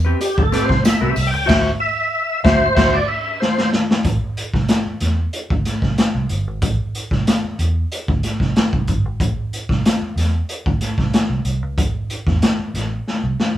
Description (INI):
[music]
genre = funk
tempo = 93 BPM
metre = 4/4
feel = straight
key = A dorian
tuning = A4 = 440 Hz
[part]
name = clean electric guitar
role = accompaniment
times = 0.0-3.0 s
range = C4 to E5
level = -20 LUFS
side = left 1 dB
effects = vibrato effect
[part]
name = vintage muted fingered electric bass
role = bass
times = 0.0-13.6 s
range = G1 to E2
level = -20 LUFS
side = right 1 dB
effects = none
[part]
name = tonewheel organ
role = melody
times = 0.2-3.7 s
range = G4 to G5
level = -19 LUFS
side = equal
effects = overdrive, chorus vibrato, slow rotary speaker
[part]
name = raw garage drum kit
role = drums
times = 0.2-13.6 s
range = crash cymbal, hi-hat, kick drum, snare drum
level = -18 LUFS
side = equal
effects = none
[part]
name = tambourine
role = percussion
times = 0.2-1.3 s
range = none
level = -35 LUFS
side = left 4 dB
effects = none
[sound]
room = light reverb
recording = band playing live in one room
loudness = -16 LUFS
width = side -12 dB against mid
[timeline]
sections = 0.0-4.1 A section; 4.1-13.6 B section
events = tonewheel organ solo 0.0-4.1; band accent 1.5-4.1; drum fill 3.4-4.1, 13.1-13.6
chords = 0.0 Am9; 1.5 D9; 4.1 Am; 11.8 Dsus2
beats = 0.20 0.84 | 1.48 2.12 2.77 3.41 | 4.05 4.69 5.34 5.98 | 6.62 7.27 7.91 8.55 | 9.20 9.84 10.49 11.13 | 11.78 12.42 13.06